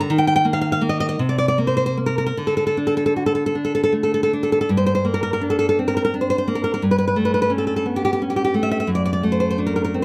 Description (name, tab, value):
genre	romantic piece for solo classical guitar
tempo	50-59 BPM (dotted quarters)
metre	6/8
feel	rubato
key	G minor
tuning	A4 = 435 Hz
part	nylon-string guitar	solo	0.0-10.0 s	F#2 to Bb5	-20 LUFS	equal	none
room	light reverb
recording	close, detailed microphones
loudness	-20 LUFS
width	mono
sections	0.0-4.7 A section; 4.7-10.0 B section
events	none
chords	0.1 Eb5; 1.2 Bbadd9/C; 2.4 D5; 4.7 Gm; 6.8 A7/G; 8.9 D/F#